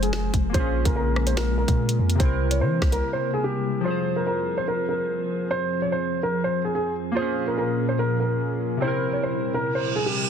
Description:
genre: hip hop, drill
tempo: 145 BPM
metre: 4/4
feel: half-time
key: F harmonic minor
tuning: A4 = 445 Hz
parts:
  - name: dark concert grand piano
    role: melody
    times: 0.0-10.3 s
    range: G4 to Db5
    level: -26 LUFS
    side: right 1 dB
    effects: low-pass filter, ping-pong delay
  - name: warbly lo-fi synth keys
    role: accompaniment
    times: 0.0-10.3 s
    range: C3 to C5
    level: -29 LUFS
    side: left 1 dB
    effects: chorus, low-pass filter
  - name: glassy FM pad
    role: sustained chords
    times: 0.0-10.3 s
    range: F2 to Bb4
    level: -29 LUFS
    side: left 1 dB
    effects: ensemble chorus, built-in reverb
  - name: long sustained 808-style bass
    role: bass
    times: 0.0-3.0 s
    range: F1 to E3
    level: -24 LUFS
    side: equal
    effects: none
  - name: drill drum kit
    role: drums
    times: 0.0-3.0 s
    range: finger snaps, hi-hat, kick drum, rim click, snare drum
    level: -24 LUFS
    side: equal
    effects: none
  - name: reverse cymbal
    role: sound effects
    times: 9.8-10.3 s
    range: none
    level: -27 LUFS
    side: right 6 dB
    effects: none
room: digital ambience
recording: dense, heavily limited modern master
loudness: -22 LUFS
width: side -8 dB against mid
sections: 0.0-3.9 A section; 3.9-10.3 B section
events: break 3.0-3.9; reverse cymbal 9.8-10.3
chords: 0.0 Fm; 0.5 Bbm7; 2.2 C7; 3.9 Fm; 7.2 Bbm7; 8.8 C7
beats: 0.13 | 0.54 0.96 1.37 1.78 | 2.20 2.61 3.03 3.44 | 3.85 4.27 4.68 5.09 | 5.51 5.92 6.34 6.75 | 7.16 7.58 7.99 8.40 | 8.82 9.23 9.65 10.06

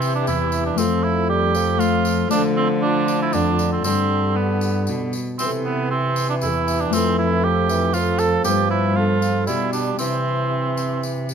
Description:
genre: classical, renaissance-style consort dance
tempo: 117 BPM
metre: 3/4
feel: straight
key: C major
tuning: A4 = 442 Hz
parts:
  - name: mellow alto recorder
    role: melody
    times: 0.0-11.3 s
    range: F4 to C5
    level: -28 LUFS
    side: right 1 dB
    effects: none
  - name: warm cor anglais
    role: second line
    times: 0.0-11.0 s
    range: B3 to A4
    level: -23 LUFS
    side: right 6 dB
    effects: none
  - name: Celtic harp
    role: accompaniment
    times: 0.0-11.3 s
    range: E2 to F4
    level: -26 LUFS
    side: left 12 dB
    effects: none
  - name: mellow bassoon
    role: accompaniment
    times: 0.0-11.3 s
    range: D3 to G3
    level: -26 LUFS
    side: left 1 dB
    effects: none
  - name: rich cello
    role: bass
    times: 0.0-11.3 s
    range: E2 to D3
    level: -23 LUFS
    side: right 2 dB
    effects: none
  - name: tambourine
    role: percussion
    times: 0.0-11.3 s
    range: none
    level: -33 LUFS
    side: left 4 dB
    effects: none
room: moderate stone room reverb, RT60 1.3 s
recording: none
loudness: -18 LUFS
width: side -7 dB against mid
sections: 0.0-11.3 A section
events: none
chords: 0.0 C; 0.8 F; 2.3 Dm; 3.9 G; 5.4 C; 6.9 F; 8.5 G7; 10.0 C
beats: 0.28 | 0.79 1.30 1.81 | 2.32 2.83 3.34 | 3.86 4.37 4.89 | 5.40 5.92 6.43 | 6.94 7.45 7.95 | 8.46 8.97 9.48 | 10.00 10.52 11.04

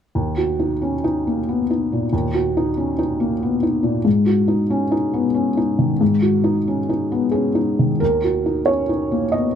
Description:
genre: neoclassical minimalist piano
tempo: 92 BPM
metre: 3/4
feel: rubato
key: Eb minor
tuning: A4 = 439 Hz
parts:
  - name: felt-muted upright piano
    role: solo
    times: 0.2-9.6 s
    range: Eb2 to Eb5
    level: -17 LUFS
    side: equal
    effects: none
room: light reverb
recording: dark, warm production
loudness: -17 LUFS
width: side -8 dB against mid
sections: 0.1-8.0 A section; 8.0-9.6 B section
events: none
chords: 0.1 Ebm; 4.1 Abm7; 8.0 Ebm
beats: | 0.15 0.82 1.47 | 2.12 2.77 3.41 | 4.05 4.71 5.36 | 6.01 6.66 7.33 | 8.01 8.68 9.33

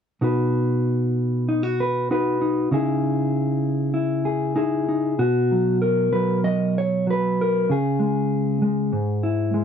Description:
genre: folk, solo fingerstyle acoustic guitar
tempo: 97 BPM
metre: 4/4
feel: rubato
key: unclear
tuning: A4 = 440 Hz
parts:
  - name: mellow electric guitar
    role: solo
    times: 0.2-9.6 s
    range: G#2 to D#5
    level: -19 LUFS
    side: equal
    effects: none
room: moderate booth ambience, RT60 0.2 s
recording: dry, close 1970s-style studio recording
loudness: -20 LUFS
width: side -7 dB against mid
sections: 0.2-5.2 A section; 5.2-9.6 B section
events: none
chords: 0.2 B; 2.7 C#madd9; 5.2 B5; 7.7 C#m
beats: | 0.22 0.85 1.48 2.10 | 2.71 3.31 3.92 4.54 | 5.17 5.81 6.43 7.06 | 7.68 8.30 8.92 9.53

